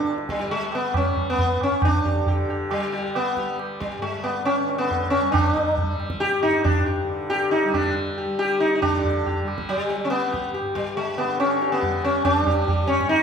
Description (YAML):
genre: indian classical, Hindustani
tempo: 138 BPM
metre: 4/4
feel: straight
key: G major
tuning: A4 = 442 Hz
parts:
  - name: sitar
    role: melody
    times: 0.0-13.2 s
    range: G3 to G4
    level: -22 LUFS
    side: left 1 dB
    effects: none
  - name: tanpura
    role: drone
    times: 0.0-13.2 s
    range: G2 to G3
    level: -32 LUFS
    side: equal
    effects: none
  - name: tabla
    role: percussion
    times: 0.1-13.2 s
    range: none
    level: -26 LUFS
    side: right 2 dB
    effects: none
room: wet recital hall reverb, RT60 1.4 s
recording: minimal, uncompressed stereo recording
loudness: -20 LUFS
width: side -7 dB against mid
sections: 0.0-8.8 A section; 8.8-13.2 B section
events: speeding up 0.0-13.2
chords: none